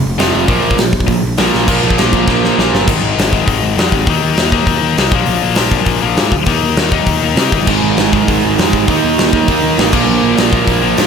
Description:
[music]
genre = punk rock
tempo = 200 BPM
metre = 4/4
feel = straight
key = unclear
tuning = A4 = 444 Hz
[part]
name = tight distorted guitar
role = riff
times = 0.0-11.1 s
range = F2 to Eb4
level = -15 LUFS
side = left 13 dB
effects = distortion
[part]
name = fuzz picked electric bass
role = bass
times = 0.1-11.1 s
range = F1 to C3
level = -18 LUFS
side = equal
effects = overdrive
[part]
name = distorted electric guitar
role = riff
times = 0.2-2.9, 7.7-11.1 s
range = F2 to Eb4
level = -15 LUFS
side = right 14 dB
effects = distortion
[part]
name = big rock drum kit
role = drums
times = 0.2-11.1 s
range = crash cymbal, hi-hat, kick drum, snare drum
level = -15 LUFS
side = equal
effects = none
[sound]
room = little or no reverb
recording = none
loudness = -10 LUFS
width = side -6 dB against mid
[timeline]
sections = 0.0-1.7 A section; 1.7-2.9 B section; 2.9-11.1 C section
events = drum fill 1.5, 2.3-2.9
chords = 0.5 Bb5; 2.9 Ab5; 4.1 Eb5; 5.1 Bb5; 6.5 Eb5; 7.7 Ab5; 8.9 Eb5; 9.9 Bb5

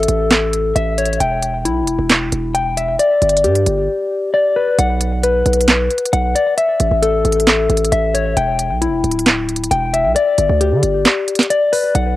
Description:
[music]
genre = hip hop, trap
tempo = 134 BPM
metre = 4/4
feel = half-time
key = unclear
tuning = A4 = 440 Hz
[part]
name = mellow electric guitar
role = arpeggios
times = 0.0-12.2 s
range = E4 to G5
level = -15 LUFS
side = left 3 dB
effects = spring reverb, low-pass filter, cassette tape, analog delay
[part]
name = distorted 808-style bass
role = bass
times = 0.0-12.2 s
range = D1 to D3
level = -19 LUFS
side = right 2 dB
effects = distortion
[part]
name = trap drum kit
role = drums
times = 0.0-12.1 s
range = handclaps, hi-hat, snare drum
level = -16 LUFS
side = right 2 dB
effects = none
[sound]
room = moderate booth ambience, RT60 0.2 s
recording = home recording on cassette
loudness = -13 LUFS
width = side -15 dB against mid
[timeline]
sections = 0.0-4.8 A section; 4.8-12.2 B section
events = break 3.9-4.8; kick muted 11.1-11.9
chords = 0.0 A; 1.2 Em; 3.0 G; 4.8 Bm; 6.6 A; 8.4 Em; 10.2 G

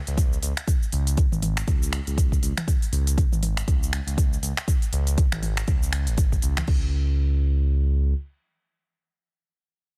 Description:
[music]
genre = afro house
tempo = 120 BPM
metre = 4/4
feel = swing 58% on 16ths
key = unclear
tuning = A4 = 441 Hz
[part]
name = smooth gliding synth bass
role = bass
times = 0.1-8.1 s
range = G#1 to C#2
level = -26 LUFS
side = equal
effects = sidechain pumping
[part]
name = afro-pop drum kit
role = drums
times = 0.1-6.8 s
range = cabasa, crash cymbal, finger snaps, hi-hat, toms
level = -33 LUFS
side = equal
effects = soft clipping on snare
[part]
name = electronic kick drum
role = drums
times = 0.2-6.8 s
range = none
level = -24 LUFS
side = equal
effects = none
[sound]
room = digital ambience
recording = dense, heavily limited modern master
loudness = -24 LUFS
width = mono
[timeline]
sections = 0.0-6.7 A section; 6.7-10.0 B section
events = drop 0.0-6.7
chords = none

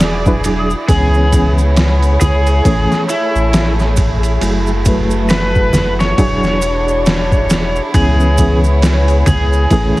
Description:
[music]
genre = trip hop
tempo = 68 BPM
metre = 4/4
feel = swing 59% on 16ths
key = C# phrygian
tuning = A4 = 443 Hz
[part]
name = overdriven slide guitar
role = melody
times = 0.0-10.0 s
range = E4 to C#5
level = -19 LUFS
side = equal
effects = tape echo
[part]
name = muted studio violin section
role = sustained chords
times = 0.0-10.0 s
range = A3 to D5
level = -21 LUFS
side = right 1 dB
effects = none
[part]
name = warm sub bass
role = bass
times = 0.0-9.9 s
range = E1 to C#2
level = -15 LUFS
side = equal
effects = none
[part]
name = trip hop sampler-style drum kit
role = drums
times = 0.0-10.0 s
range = kick drum, ride cymbal, snare drum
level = -17 LUFS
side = equal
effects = overdrive
[part]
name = maracas and congas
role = percussion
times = 0.0-10.0 s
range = none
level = -20 LUFS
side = right 1 dB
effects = none
[part]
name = bright reed electric piano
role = accompaniment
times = 0.3-10.0 s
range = E3 to B4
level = -18 LUFS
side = equal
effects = overdrive, fast tremolo, tape echo
[part]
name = flickering grainy texture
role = texture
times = 1.9-10.0 s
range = G#4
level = -29 LUFS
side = equal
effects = built-in reverb
[sound]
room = light reverb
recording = heavily compressed radio sound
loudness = -11 LUFS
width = side -18 dB against mid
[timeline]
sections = 0.0-10.0 A section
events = none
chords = 0.0 E9; 0.9 C#m7; 2.6 Amaj7; 4.4 F#m9; 6.2 E9; 7.9 C#m7

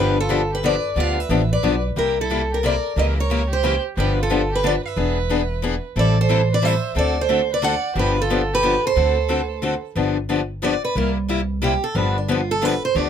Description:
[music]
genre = acoustic string swing (jazz manouche)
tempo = 180 BPM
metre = 3/4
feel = swing 61% on 8ths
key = G mixolydian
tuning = A4 = 441 Hz
[part]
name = picked steel-string acoustic guitar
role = melody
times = 0.0-13.1 s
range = D4 to F#5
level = -22 LUFS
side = right 2 dB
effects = none
[part]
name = warm violin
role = second line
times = 0.0-9.8 s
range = E4 to D5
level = -29 LUFS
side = right 7 dB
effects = none
[part]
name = picked steel-string acoustic guitar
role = accompaniment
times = 0.0-13.1 s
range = C3 to A4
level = -22 LUFS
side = left 4 dB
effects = none
[part]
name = upright bass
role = bass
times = 0.0-13.1 s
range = E1 to D2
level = -23 LUFS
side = equal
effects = none
[sound]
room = little or no reverb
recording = close, detailed microphones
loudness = -18 LUFS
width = side -8 dB against mid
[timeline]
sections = 0.0-10.0 A section; 10.0-13.1 B section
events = steel-string acoustic guitar solo 10.0-13.1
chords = 0.0 G7; 2.0 C7; 3.0 C#dim7; 4.0 G7; 5.0 E7; 6.0 Am7; 7.0 D7; 8.0 G7; 9.0 D7; 10.0 G7; 11.0 C7; 12.0 G7

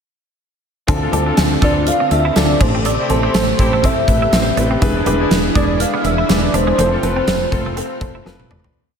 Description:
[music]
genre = 1980s-style pop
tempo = 122 BPM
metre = 4/4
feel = swing 55% on 16ths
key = unclear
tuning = A4 = 440 Hz
[part]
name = warm concert grand piano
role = accompaniment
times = 0.9-8.8 s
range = C4 to D5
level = -21 LUFS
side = left 2 dB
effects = none
[part]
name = string machine, violins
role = sustained chords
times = 0.9-8.7 s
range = C3 to G4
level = -24 LUFS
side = right 1 dB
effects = ensemble chorus
[part]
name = twelve-string electric guitar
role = riff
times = 0.9-8.7 s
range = E3 to E4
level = -26 LUFS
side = right 5 dB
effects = wide subtle chorus, diffuse ambient delay
[part]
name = woody fretless electric bass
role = bass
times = 0.9-8.7 s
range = E1 to D2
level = -20 LUFS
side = equal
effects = none
[part]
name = gated 80s drum kit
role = drums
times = 0.9-8.7 s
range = crash cymbal, hi-hat, kick drum, snare drum, tambourine, toms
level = -18 LUFS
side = equal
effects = none
[part]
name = clear horn section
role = stabs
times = 1.0-7.7 s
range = C4 to A4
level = -29 LUFS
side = left 2 dB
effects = diffuse ambient delay
[part]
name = warm velvety synth lead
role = melody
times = 1.6-8.3 s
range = C5 to F5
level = -20 LUFS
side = equal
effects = chorus, diffuse ambient delay
[part]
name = synth chime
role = second line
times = 1.6-8.3 s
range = C6 to F6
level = -30 LUFS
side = right 2 dB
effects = ensemble chorus, phaser, diffuse ambient delay
[sound]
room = wet lush hall reverb, RT60 1.7 s, small room ambience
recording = dreamy mix soaked in reverb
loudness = -13 LUFS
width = side -7 dB against mid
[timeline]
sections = 0.9-8.8 chorus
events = fade-out 6.8-8.8; drum fill 8.3-8.8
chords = 0.9 Dm7; 2.6 Am7; 4.8 E7; 6.8 F

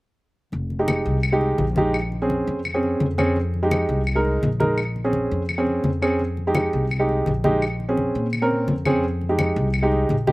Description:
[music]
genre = Afro-Cuban jazz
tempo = 169 BPM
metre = 4/4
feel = straight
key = F minor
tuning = A4 = 440 Hz
[part]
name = upright bass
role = bass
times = 0.5-10.3 s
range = F1 to Bb2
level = -25 LUFS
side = left 1 dB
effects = none
[part]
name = congas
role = percussion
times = 0.5-10.3 s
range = none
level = -27 LUFS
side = left 1 dB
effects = none
[part]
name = warm upright piano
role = accompaniment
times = 0.8-10.3 s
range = Ab3 to Bb4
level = -22 LUFS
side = right 1 dB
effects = slapback echo
[part]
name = claves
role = percussion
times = 0.9-9.9 s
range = none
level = -30 LUFS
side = left 3 dB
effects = none
[sound]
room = little or no reverb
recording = recorded outdoors, with no room sound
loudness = -19 LUFS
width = side -21 dB against mid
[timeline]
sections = 0.5-10.3 A section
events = none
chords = 0.5 Fm7; 1.9 Bbm7; 3.4 Fm7; 4.8 Bbm7; 6.2 Fm7; 7.6 Bbm7; 9.0 Fm7

